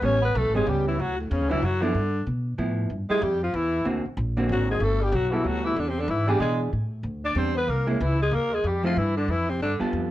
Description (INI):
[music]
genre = jazz, small-group swing and bop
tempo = 188 BPM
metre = 3/4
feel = swing 62% on 8ths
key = unclear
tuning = A4 = 440 Hz
[part]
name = growling alto saxophone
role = melody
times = 0.0-9.7 s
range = A3 to D5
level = -27 LUFS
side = left 2 dB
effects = plate reverb
[part]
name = clear tenor saxophone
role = second line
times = 0.0-9.8 s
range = A2 to D4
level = -30 LUFS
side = right 2 dB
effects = none
[part]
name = vintage hollow-body jazz guitar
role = accompaniment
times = 0.0-10.1 s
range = D3 to A4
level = -27 LUFS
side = right 2 dB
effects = none
[part]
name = upright bass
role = bass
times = 0.0-10.1 s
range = G1 to B2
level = -26 LUFS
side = equal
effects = none
[sound]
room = moderate studio reverb, RT60 0.5 s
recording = worn, warbling old tape, cassette tape, warbly pitch drift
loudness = -22 LUFS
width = side -14 dB against mid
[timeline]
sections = 0.0-6.7 A section; 6.7-10.1 B section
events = none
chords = 0.0 A9; 1.0 Dmaj9; 1.9 G13; 2.9 Fmaj7sus2; 3.9 Daug7; 4.8 Gmaj9; 5.8 E7; 6.7 Am7; 7.7 C7alt; 8.6 Fmaj7(no3); 9.6 G9